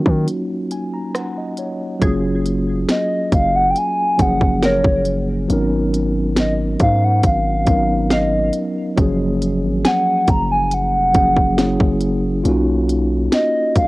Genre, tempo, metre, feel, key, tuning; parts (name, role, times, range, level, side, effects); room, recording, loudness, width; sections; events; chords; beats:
contemporary R&B; 69 BPM; 4/4; straight; F# major; A4 = 440 Hz
mellow tine electric piano; accompaniment; 0.0-13.9 s; E#3 to A#5; -20 LUFS; equal; medium stereo tremolo, cassette tape
long sustained 808-style bass; bass; 0.0-13.9 s; E#1 to D#3; -20 LUFS; equal
trap drum kit; drums; 0.1-13.9 s; hi-hat, kick drum, rim click, snare drum; -18 LUFS; equal; cassette tape
glassy wavetable pluck; texture; 2.0-11.8 s; G#4 to G#5; -28 LUFS; equal; chorus, cassette tape, analog delay
hollow clarinet-like synth lead; melody; 2.9-13.9 s; C#5 to A#5; -18 LUFS; equal; chorus, cassette tape
light reverb; home recording on cassette; -15 LUFS; side -20 dB against mid
0.0-2.0 A section; 2.0-13.9 B section
break 0.3-2.0; tine electric piano fill 0.3-2.0
0.0 D#m7; 2.0 F#maj9; 5.5 G#m11; 9.0 F#maj9; 11.6 F#9; 12.5 Bmaj9#11
0.28 1.15 | 2.02 2.89 3.76 4.63 | 5.50 6.37 7.23 8.10 | 8.97 9.84 10.71 11.58 | 12.45 13.32